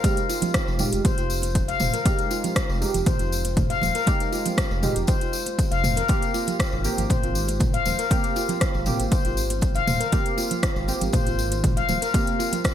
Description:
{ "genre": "afro house", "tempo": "119 BPM", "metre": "4/4", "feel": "straight", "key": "unclear", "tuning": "A4 = 436 Hz", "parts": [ { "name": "handpan", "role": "arpeggios", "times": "0.0-12.6 s", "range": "C4 to F5", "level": "-26 LUFS", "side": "left 3 dB", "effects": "sidechain pumping, ping-pong delay" }, { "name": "deep mellow chord stab", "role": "stabs", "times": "0.0-12.7 s", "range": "Ab3 to G4", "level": "-31 LUFS", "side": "right 3 dB", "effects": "chorus, sidechain pumping, ping-pong delay" }, { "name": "electronic kick drum", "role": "drums", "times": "0.0-12.7 s", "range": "none", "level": "-24 LUFS", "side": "equal", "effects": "overdrive" }, { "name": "house drum kit", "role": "drums", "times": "0.0-12.7 s", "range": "hi-hat, rim click, toms", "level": "-29 LUFS", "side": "equal", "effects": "overdrive, gated reverb" }, { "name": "congas", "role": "percussion", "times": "0.0-12.7 s", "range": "none", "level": "-32 LUFS", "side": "right 4 dB", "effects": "none" }, { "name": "tambourine", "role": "percussion", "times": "0.0-12.7 s", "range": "none", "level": "-34 LUFS", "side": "left 2 dB", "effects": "none" }, { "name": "dark detuned saw bass", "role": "bass", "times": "0.7-12.0 s", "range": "Eb1 to Ab1", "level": "-28 LUFS", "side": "equal", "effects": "sidechain pumping" } ], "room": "light reverb, digital ambience", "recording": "bright 1980s-style digital production", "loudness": "-20 LUFS", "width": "side -10 dB against mid", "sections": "0.0-12.7 A section", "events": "none", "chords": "0.0 Abmaj9", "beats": "| 0.04 0.55 1.05 1.55 | 2.06 2.56 3.07 3.57 | 4.08 4.58 5.08 5.59 | 6.09 6.60 7.10 7.60 | 8.11 8.61 9.12 9.62 | 10.12 10.63 11.13 11.64 | 12.14 12.65" }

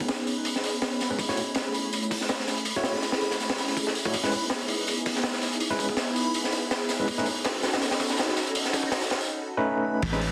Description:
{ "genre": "drum and bass, jungle", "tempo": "163 BPM", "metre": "4/4", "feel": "swing 55% on 16ths", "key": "unclear", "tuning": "A4 = 440 Hz", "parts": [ { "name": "soft string machine", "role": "sustained chords", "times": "0.0-10.3 s", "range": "A3 to A4", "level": "-33 LUFS", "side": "equal", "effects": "phaser, ensemble chorus" }, { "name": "crunchy breakbeat drum kit", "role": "drums", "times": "0.0-10.3 s", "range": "crash cymbal, hi-hat, kick drum, snare drum", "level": "-31 LUFS", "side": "equal", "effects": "high-pass filter on kick, high-pass filter on hats, high-pass filter on cymbals, high-pass filter on snare, high-pass filter on room" }, { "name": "backwards swelling texture", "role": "texture", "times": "0.2-9.3 s", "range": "B5", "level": "-41 LUFS", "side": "equal", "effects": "built-in reverb" }, { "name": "crunchy breakbeat drum kit", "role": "drums", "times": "0.1-9.3 s", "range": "hi-hat, snare drum, tambourine", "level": "-37 LUFS", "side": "equal", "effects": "high-pass filter on hats, high-pass filter on snare, high-pass filter on perc, high-pass filter on room" }, { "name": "overdriven tine electric piano", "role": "stabs", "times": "1.1-7.3, 9.6-10.2 s", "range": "G#3 to C#5", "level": "-33 LUFS", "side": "equal", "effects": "fast tremolo, low-pass filter, dub echo" }, { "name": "saturated sub bass", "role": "bass", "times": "10.0-10.3 s", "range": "A1", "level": "-31 LUFS", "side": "equal", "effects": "none" } ], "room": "moderate digital room reverb, RT60 0.9 s, studio ambience", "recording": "dense, heavily limited modern master, vinyl crackle", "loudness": "-27 LUFS", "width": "mono", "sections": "0.0-10.0 A section", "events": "build-up 0.0-10.0; filter sweep on string machine 0.0-10.0", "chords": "0.0 G#madd11; 1.2 F#m7 (rootless); 4.1 C#m7 (rootless); 7.1 B9", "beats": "0.09 0.45 0.82 | 1.19 1.56 1.93 2.29 | 2.66 3.03 3.40 3.77 | 4.13 4.50 4.87 5.24 | 5.61 5.97 6.34 6.71 | 7.08 7.45 7.82 8.18 | 8.55 8.92 9.29 9.66 | 10.02" }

